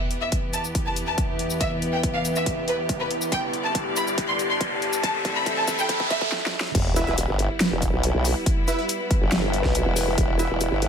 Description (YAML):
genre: heavy wobble dubstep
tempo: 140 BPM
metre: 4/4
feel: half-time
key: E minor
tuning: A4 = 439 Hz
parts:
  - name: clear studio string section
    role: sustained chords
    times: 0.0-10.9 s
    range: E2 to E5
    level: -31 LUFS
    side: left 1 dB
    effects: sidechain pumping
  - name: riser and sub drop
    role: sound effects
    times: 0.0-8.5 s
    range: none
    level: -31 LUFS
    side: equal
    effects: none
  - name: warbly tape-like pad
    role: texture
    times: 0.5-10.9 s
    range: E4 to B5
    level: -30 LUFS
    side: equal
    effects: chorus, built-in reverb, sidechain pumping
  - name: dubstep drum kit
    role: drums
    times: 0.1-10.9 s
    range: crash cymbal, hi-hat, shaker, snare drum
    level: -28 LUFS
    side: left 1 dB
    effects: none
  - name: warm studio violin section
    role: melody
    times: 0.2-6.2 s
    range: B4 to C6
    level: -27 LUFS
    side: equal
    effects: ping-pong delay
  - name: electronic kick drum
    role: drums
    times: 0.3-10.3 s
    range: none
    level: -26 LUFS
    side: equal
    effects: overdrive
  - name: formant-sweep wobble bass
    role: bass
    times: 6.7-10.9 s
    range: E1 to B1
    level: -24 LUFS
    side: equal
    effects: chorus, overdrive
  - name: supersaw stab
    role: stabs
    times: 7.0-10.5 s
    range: E4 to E5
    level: -29 LUFS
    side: right 2 dB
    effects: ping-pong delay
room: light reverb, digital ambience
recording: high-pass filter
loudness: -21 LUFS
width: side -7 dB against mid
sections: 0.0-6.7 A section; 6.7-10.9 B section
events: build-up 0.0-6.7; riser 0.0-6.3; filter sweep 0.0-6.7; drum fill 3.3-6.3, 6.3-6.7; stop 6.3-6.7; drop 6.7-10.9; impact 6.7-8.5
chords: 0.0 Em; 3.3 G; 5.0 Am; 6.7 Em